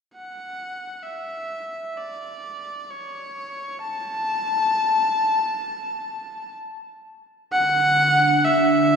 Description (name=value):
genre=ambient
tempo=free time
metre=none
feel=none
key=D major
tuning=A4 = 439 Hz
part: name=rich electric violin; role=melody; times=0.1-9.0 s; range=C#5 to A5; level=-22 LUFS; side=left 1 dB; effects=analog delay
part: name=overtone-sweeping drone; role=drone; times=7.7-9.0 s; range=D3 to D4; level=-21 LUFS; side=right 2 dB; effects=chorus, built-in reverb
room=wet echo chamber reverb, RT60 2.5 s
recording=echo-heavy mix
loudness=-20 LUFS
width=side -6 dB against mid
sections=0.1-9.0 A section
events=fade-in on electric violin 0.1-9.0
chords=none